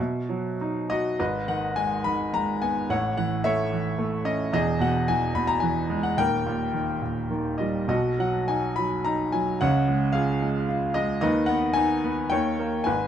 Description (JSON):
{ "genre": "classical, lyrical solo piano", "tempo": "96-112 BPM", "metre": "3/4", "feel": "rubato", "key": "G# minor", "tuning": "A4 = 440 Hz", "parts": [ { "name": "bright baby grand piano", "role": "solo", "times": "0.0-13.1 s", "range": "D#1 to B5", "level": "-23 LUFS", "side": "equal", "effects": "none" } ], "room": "light reverb", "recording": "dark, warm production", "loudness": "-23 LUFS", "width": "side -9 dB against mid", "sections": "0.0-1.2 A section; 1.2-13.1 B section", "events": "none", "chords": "0.0 B; 1.2 G#m; 2.9 A; 4.5 E; 6.2 D#; 7.9 B; 9.6 C#; 11.2 G#m/D#; 12.3 D#7" }